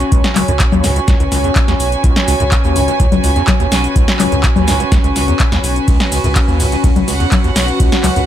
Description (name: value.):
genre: acid house.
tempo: 125 BPM.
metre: 4/4.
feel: straight.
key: unclear.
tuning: A4 = 440 Hz.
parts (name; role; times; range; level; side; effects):
dark analog pad; sustained chords; 0.0-8.3 s; C#4 to C#5; -20 LUFS; left 2 dB; chorus, sidechain pumping.
round analog bass; bass; 0.0-8.3 s; B1 to C#2; -18 LUFS; equal; sidechain pumping.
electro analog drum machine; drums; 0.0-8.3 s; congas, handclaps, hi-hat, ride cymbal, shaker, snare drum; -17 LUFS; left 2 dB; none.
rich chamber string section; texture; 0.0-8.3 s; F#4 to G#5; -20 LUFS; right 4 dB; sidechain pumping.
acid bass, square; riff; 0.1-8.2 s; C#2 to G#2; -18 LUFS; equal; overdrive, wide subtle chorus, vintage 12-bit sampler grit, sidechain pumping.
electronic kick drum; drums; 0.1-7.9 s; none; -14 LUFS; equal; none.
room: light reverb.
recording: none.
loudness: -11 LUFS.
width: side -11 dB against mid.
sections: 0.0-8.3 A section.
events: none.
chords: 0.0 C#5.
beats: | 0.12 0.60 1.08 1.56 | 2.04 2.52 3.00 3.48 | 3.96 4.44 4.92 5.40 | 5.88 6.36 6.84 7.32 | 7.80.